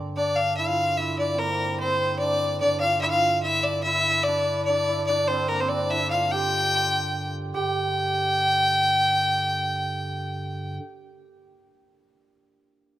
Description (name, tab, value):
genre	medieval dance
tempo	146 BPM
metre	3/4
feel	straight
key	G dorian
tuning	A4 = 436 Hz
part	hammered dulcimer	second line	0.0-11.4 s	Bb3 to G4	-32 LUFS	right 4 dB	none
part	pipe organ, stopped flute	drone	0.0-10.8 s	G2 to D3	-32 LUFS	equal	none
part	clear fiddle	melody	0.2-10.8 s	Bb4 to G5	-22 LUFS	left 1 dB	none
room	moderate plate reverb, RT60 2.9 s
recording	rough home demo mix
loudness	-21 LUFS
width	side -13 dB against mid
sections	0.0-7.6 A section; 7.6-10.0 B section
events	none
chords	none